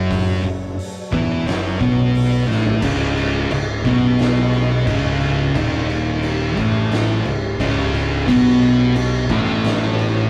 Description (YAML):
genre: stoner and doom metal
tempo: 88 BPM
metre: 4/4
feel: straight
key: C# minor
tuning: A4 = 441 Hz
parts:
  - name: string machine, cellos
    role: sustained chords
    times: 0.0-10.3 s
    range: F#3 to E5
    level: -32 LUFS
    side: equal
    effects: none
  - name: thick fuzz guitar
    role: riff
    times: 0.0-10.3 s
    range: C#2 to E4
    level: -24 LUFS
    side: equal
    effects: distortion
  - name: thick fuzz guitar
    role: riff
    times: 0.0-10.3 s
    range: C#2 to E4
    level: -24 LUFS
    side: equal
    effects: distortion
  - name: growling fingered electric bass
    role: bass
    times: 0.0-10.3 s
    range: C#1 to E2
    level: -24 LUFS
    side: equal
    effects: overdrive, tube saturation
  - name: oversized low-tuned drum kit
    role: drums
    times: 0.1-10.1 s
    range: crash cymbal, hi-hat, kick drum, snare drum, toms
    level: -26 LUFS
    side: equal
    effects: none
  - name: fuzz guitar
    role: riff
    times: 8.3-10.3 s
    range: A2 to B3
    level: -22 LUFS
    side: equal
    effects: distortion
room: moderate small room ambience, RT60 0.5 s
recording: rough rehearsal-room recording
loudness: -18 LUFS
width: mono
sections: 0.0-2.8 A section; 2.8-10.3 B section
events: drum fill 2.5-2.8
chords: 0.0 F#5; 2.8 C#m; 8.3 B5